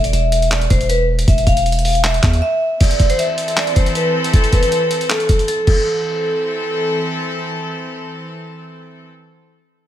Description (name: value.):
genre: hip hop, trap.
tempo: 157 BPM.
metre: 4/4.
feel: half-time.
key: A minor.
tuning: A4 = 436 Hz.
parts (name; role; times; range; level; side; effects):
vibraphone with medium hard mallets; melody; 0.0-7.0 s; A4 to F5; -18 LUFS; equal; ping-pong delay.
long sustained 808-style bass; bass; 0.0-2.4 s; E1 to E2; -17 LUFS; equal; none.
boom bap sampler-style drum kit; drums; 0.0-5.8 s; crash cymbal, handclaps, hi-hat, kick drum; -16 LUFS; equal; none.
rich chamber string section; sustained chords; 2.8-9.1 s; E3 to A4; -23 LUFS; equal; none.
room: little or no reverb.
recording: none.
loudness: -14 LUFS.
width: side -11 dB against mid.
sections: 0.0-2.8 A section; 2.8-5.9 B section; 5.9-8.9 C section.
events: break 2.4-2.8.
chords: 0.0 N.C.; 2.8 Am.